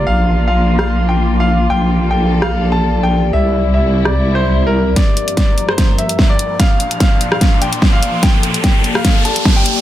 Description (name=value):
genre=heavy wobble dubstep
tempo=147 BPM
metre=4/4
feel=swing 54% on 16ths, half-time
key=G dorian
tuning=A4 = 440 Hz
part: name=bright concert grand piano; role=melody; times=0.0-9.8 s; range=Bb4 to A5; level=-20 LUFS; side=left 1 dB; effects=dub echo
part: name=warm studio string section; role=sustained chords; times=0.0-9.8 s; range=G2 to A4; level=-22 LUFS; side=left 1 dB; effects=sidechain pumping, low-pass filter
part: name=wobble bass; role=bass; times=0.0-4.9 s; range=Bb1 to C2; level=-14 LUFS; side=equal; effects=chorus, overdrive
part: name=impact and riser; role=sound effects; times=0.0-0.1, 6.4-9.8 s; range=none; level=-22 LUFS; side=right 1 dB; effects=none
part: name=warbly tape-like pad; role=texture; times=0.0-9.8 s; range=Bb3 to D6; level=-23 LUFS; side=left 2 dB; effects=chorus, built-in reverb, sidechain pumping
part: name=dubstep drum kit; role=drums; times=0.8-9.7 s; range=hi-hat, rim click, snare drum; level=-17 LUFS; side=equal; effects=low-pass filter on hats, low-pass filter on cymbals, low-pass filter on snare, low-pass filter on room
part: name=electronic kick drum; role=drums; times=5.0-9.5 s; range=none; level=-13 LUFS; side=equal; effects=none
room=light reverb, digital ambience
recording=dense, heavily limited modern master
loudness=-11 LUFS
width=side -13 dB against mid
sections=0.0-5.0 A section; 5.0-9.8 B section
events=build-up 5.0-9.8; drum fill 5.0-9.8; filter sweep on string section 5.0-9.8; riser 6.4-9.8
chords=0.1 Bb; 1.7 Gm7/Bb; 3.3 C; 5.0 Gm7; 6.6 Bb; 8.2 Gm7/Bb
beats=| 0.07 0.47 0.88 1.29 | 1.70 2.11 2.52 2.92 | 3.33 3.74 4.15 4.56 | 4.96 5.37 5.78 6.19 | 6.60 7.00 7.41 7.82 | 8.23 8.64 9.05 9.45